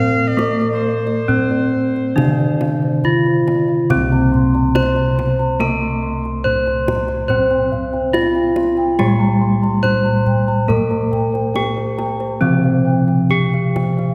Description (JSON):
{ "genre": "Javanese gamelan", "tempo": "70 BPM", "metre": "4/4", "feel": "uneven beats", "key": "C slendro", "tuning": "A4 = 440 Hz", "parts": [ { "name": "gamelan-type bronze metallophone", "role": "melody", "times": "0.0-14.1 s", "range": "Bb3-45c to C5", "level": "-21 LUFS", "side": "equal", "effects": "none" }, { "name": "bright reedy tenor recorder", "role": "second line", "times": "0.0-2.6 s", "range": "C5 to F5-33c", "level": "-27 LUFS", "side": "equal", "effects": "none" }, { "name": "gamelan-type bronze metallophone", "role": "accompaniment", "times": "0.0-14.1 s", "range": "C3 to C4", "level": "-23 LUFS", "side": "equal", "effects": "none" }, { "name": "gamelan-type bossed gongs", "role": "arpeggios", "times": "0.0-14.1 s", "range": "C5 to C6", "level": "-30 LUFS", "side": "equal", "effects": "none" }, { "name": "gamelan-type bronze metallophone", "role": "arpeggios", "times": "0.0-14.1 s", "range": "Bb4-45c to C6", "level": "-31 LUFS", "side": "equal", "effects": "none" }, { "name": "gamelan-type bossed gongs", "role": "bass", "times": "0.0-14.1 s", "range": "C2 to C5", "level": "-23 LUFS", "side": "equal", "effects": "none" }, { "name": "kendang", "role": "percussion", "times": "0.4-14.1 s", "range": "none", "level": "-28 LUFS", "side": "equal", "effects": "none" } ], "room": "wet concert hall reverb, RT60 2.4 s", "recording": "heard from further back in the room", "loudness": "-17 LUFS", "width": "mono", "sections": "0.0-3.9 A section; 3.9-14.1 B section", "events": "none", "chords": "none" }